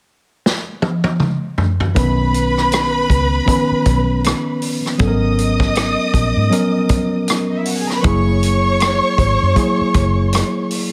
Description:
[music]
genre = lush 1970s-style soul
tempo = 79 BPM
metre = 4/4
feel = swing 58% on 16ths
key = B major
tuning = A4 = 439 Hz
[part]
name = vintage drum kit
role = drums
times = 0.5-10.9 s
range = hi-hat, kick drum, rim click, snare drum, toms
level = -21 LUFS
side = equal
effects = none
[part]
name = tine electric piano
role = accompaniment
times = 1.9-10.9 s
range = D#3 to B4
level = -21 LUFS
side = equal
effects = overdrive
[part]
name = warm symphonic violin section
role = second line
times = 2.0-10.7 s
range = D#4 to D#6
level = -23 LUFS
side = equal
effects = none
[part]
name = vintage muted fingered electric bass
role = bass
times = 2.0-10.4 s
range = F#1 to G#2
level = -21 LUFS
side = equal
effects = none
[sound]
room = light reverb, studio reverb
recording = none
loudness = -16 LUFS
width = mono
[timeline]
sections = 0.0-2.0 A section; 2.0-10.9 B section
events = drum fill 0.4-2.0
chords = 0.0 N.C.; 2.0 Badd9; 5.0 G#m11; 8.0 F#9

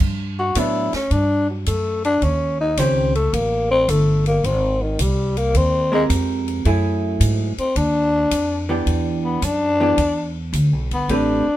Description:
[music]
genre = jazz, small-group swing and bop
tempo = 108 BPM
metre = 4/4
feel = swing 68% on 8ths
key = unclear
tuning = A4 = 440 Hz
[part]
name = upright bass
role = bass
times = 0.0-11.5 s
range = G1 to A2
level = -21 LUFS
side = equal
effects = none
[part]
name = open jazz drum kit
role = drums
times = 0.0-11.3 s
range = crash cymbal, hi-hat, kick drum, ride cymbal, snare drum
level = -30 LUFS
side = equal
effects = none
[part]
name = growling tenor saxophone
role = melody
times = 0.4-11.6 s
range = Eb3 to F#4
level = -19 LUFS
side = left 2 dB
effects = none
[part]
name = vintage hollow-body jazz guitar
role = accompaniment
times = 0.6-11.4 s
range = Eb3 to C5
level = -21 LUFS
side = right 2 dB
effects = none
[sound]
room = light reverb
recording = minimal, uncompressed stereo recording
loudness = -17 LUFS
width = side -14 dB against mid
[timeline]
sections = 0.0-11.6 A section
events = none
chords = 0.0 Gmaj7; 2.2 Eb6; 4.4 Abmaj9; 6.7 F#m9; 7.8 Baug; 8.9 Em7

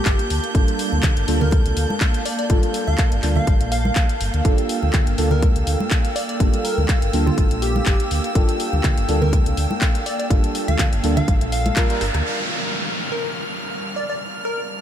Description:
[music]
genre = deep house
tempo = 123 BPM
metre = 4/4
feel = swing 54% on 16ths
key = G dorian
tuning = A4 = 440 Hz
[part]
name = plucky unison lead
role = melody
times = 0.0-14.6 s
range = F4 to F5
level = -28 LUFS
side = equal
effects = analog delay
[part]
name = warm analog pad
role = sustained chords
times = 0.0-14.8 s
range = G3 to A5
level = -29 LUFS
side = right 1 dB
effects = chorus, sidechain pumping
[part]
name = deep mellow chord stab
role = stabs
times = 0.0-12.0 s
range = G3 to Bb4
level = -26 LUFS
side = right 1 dB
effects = chorus, phaser, cassette tape, sidechain pumping, diffuse ambient delay
[part]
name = rich chamber violin section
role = texture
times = 0.0-14.8 s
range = E6 to G6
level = -32 LUFS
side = right 3 dB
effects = sidechain pumping
[part]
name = sub bass with octave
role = bass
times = 0.1-12.2 s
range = G1 to D2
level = -22 LUFS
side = equal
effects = sidechain pumping
[part]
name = electronic kick drum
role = drums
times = 0.1-11.9 s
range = none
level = -18 LUFS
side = equal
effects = none
[part]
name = house drum kit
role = drums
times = 0.1-12.2 s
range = handclaps, hi-hat, rim click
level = -28 LUFS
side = left 2 dB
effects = low-pass filter on hats, low-pass filter on snare, low-pass filter on room
[part]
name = congas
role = percussion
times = 0.9-11.7 s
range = none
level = -28 LUFS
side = right 2 dB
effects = none
[part]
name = downlifter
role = sound effects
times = 12.3-14.8 s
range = none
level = -27 LUFS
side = equal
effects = none
[sound]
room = light reverb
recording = none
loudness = -17 LUFS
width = side -10 dB against mid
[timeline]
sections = 0.0-12.3 A section; 12.3-14.8 B section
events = band accent 11.8; drum fill 12.0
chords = 0.0 Gm7

